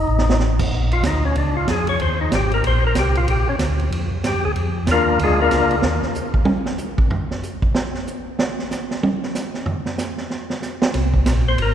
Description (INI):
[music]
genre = soul jazz organ trio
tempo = 188 BPM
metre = 4/4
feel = swing 62% on 8ths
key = Bb mixolydian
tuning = A4 = 441 Hz
[part]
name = percussive tonewheel organ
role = melody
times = 0.0-5.8, 11.5-11.7 s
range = Ab3 to Db5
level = -20 LUFS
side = left 2 dB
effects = overdrive, fast rotary speaker
[part]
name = mellow tonewheel organ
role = bass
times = 0.0-6.0, 10.9-11.7 s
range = Ab1 to G2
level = -20 LUFS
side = equal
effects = slow rotary speaker
[part]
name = vintage drum kit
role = drums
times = 0.2-11.7 s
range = crash cymbal, hi-hat, kick drum, ride cymbal, snare drum, toms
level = -22 LUFS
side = right 2 dB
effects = none
[sound]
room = wet church reverb, RT60 3.3 s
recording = recorded in a church or concert hall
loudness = -17 LUFS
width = side -10 dB against mid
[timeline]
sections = 0.7-11.7 A section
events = drum fill 0.1-0.4; tonewheel organ solo 0.7-11.7; drum solo 5.8-10.9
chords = 0.0 F7 (rootless); 0.7 Bb; 2.0 Eb5; 3.3 Bb7#9; 5.8 N.C.; 10.9 C5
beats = 0.08 0.40 | 0.72 1.04 1.36 1.68 | 2.00 2.31 2.63 2.95 | 3.27 3.59 3.91 4.23 | 4.55 4.87 5.19 5.51 | 5.83 6.15 6.47 6.79 | 7.11 7.43 7.75 8.06 | 8.38 8.70 9.02 9.34 | 9.66 9.98 10.30 10.62 | 10.94 11.26 11.58